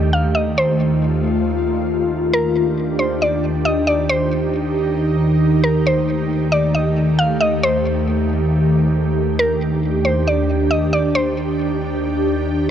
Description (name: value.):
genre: hip hop.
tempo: 136 BPM.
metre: 4/4.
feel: half-time.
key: Eb lydian.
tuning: A4 = 440 Hz.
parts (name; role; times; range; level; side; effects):
mallet-like synth pluck; melody; 0.0-12.7 s; Bb4 to F5; -21 LUFS; equal; chorus, low-pass filter, tape echo.
ethereal airy pad; sustained chords; 0.0-12.7 s; Eb2 to G4; -17 LUFS; equal; ensemble chorus, built-in reverb, low-pass filter.
room: moderate huge ambient reverb, RT60 8.6 s.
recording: dark, warm production.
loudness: -15 LUFS.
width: side -9 dB against mid.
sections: 0.0-2.3 A section; 2.3-12.7 B section.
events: none.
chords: 0.0 F7/Eb; 2.3 Ebmaj7; 5.9 F9/Eb (rootless); 9.4 Ebmaj7.